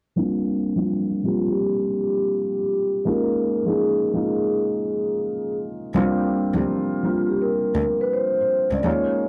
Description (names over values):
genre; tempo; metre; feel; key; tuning
lo-fi hip hop; 83 BPM; 4/4; swing 66% on 16ths; C minor; A4 = 441 Hz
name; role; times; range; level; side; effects
felt-muted upright piano; accompaniment; 0.2-9.3 s; G3 to G4; -26 LUFS; equal; cassette tape, low-pass filter
vibraphone with soft mallets; melody; 1.3-9.3 s; F4 to D5; -24 LUFS; equal; low-pass filter
warm cello; bass; 5.9-8.9 s; C2 to Eb2; -28 LUFS; equal; none
room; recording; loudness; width
light reverb; dry, gritty hardware recording, transformer saturation, cassette tape; -23 LUFS; mono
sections
0.2-9.3 A section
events
filter sweep 0.2-9.3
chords
0.2 C9sus4; 3.1 Eb9sus4; 5.9 C9sus4